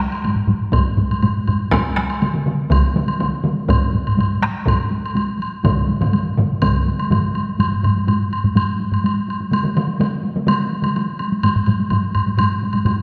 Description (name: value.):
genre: japanese traditional, taiko drum ensemble.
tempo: 124 BPM.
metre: 4/4.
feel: straight.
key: none.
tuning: none.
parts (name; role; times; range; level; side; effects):
taiko ensemble; percussion; 0.1-13.0 s; none; -24 LUFS; equal; none.
woodblock; percussion; 0.1-13.0 s; none; -28 LUFS; equal; none.
taiko ensemble; percussion; 0.2-13.0 s; none; -22 LUFS; equal; none.
taiko ensemble; percussion; 0.7-6.7 s; none; -24 LUFS; equal; none.
taiko ensemble; percussion; 1.7-10.9 s; none; -24 LUFS; equal; none.
room: wet concert hall reverb, RT60 1.9 s.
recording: none.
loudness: -19 LUFS.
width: mono.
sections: 0.0-7.6 A section; 7.6-13.0 B section.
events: speeding up 0.0-13.0.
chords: none.